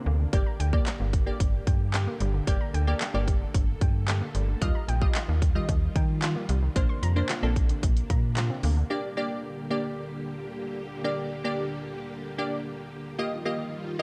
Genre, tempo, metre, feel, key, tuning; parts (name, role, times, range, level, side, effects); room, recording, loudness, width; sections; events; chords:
dance-pop; 112 BPM; 4/4; straight; G minor; A4 = 440 Hz
string machine, cellos; sustained chords; 0.0-14.0 s; C3 to A4; -39 LUFS; equal; ensemble chorus, sidechain pumping
hollow square pluck; arpeggios; 0.0-8.9 s; D3 to G6; -41 LUFS; equal; chorus, sidechain pumping, slapback echo
slap-like FM bass; bass; 0.1-8.8 s; G1 to Eb3; -28 LUFS; equal; sidechain pumping
wavetable chord stab; accompaniment; 0.3-14.0 s; G3 to Eb5; -34 LUFS; equal; sidechain pumping
pop drum kit; drums; 0.3-8.8 s; handclaps, hi-hat, kick drum, snare drum; -29 LUFS; equal
light reverb; dark, warm production; -27 LUFS; mono
0.0-8.9 A section; 8.9-14.0 B section
0.3 Gm; 4.6 Ebadd9; 6.8 Bbadd9; 8.9 Gm; 13.2 Ebadd9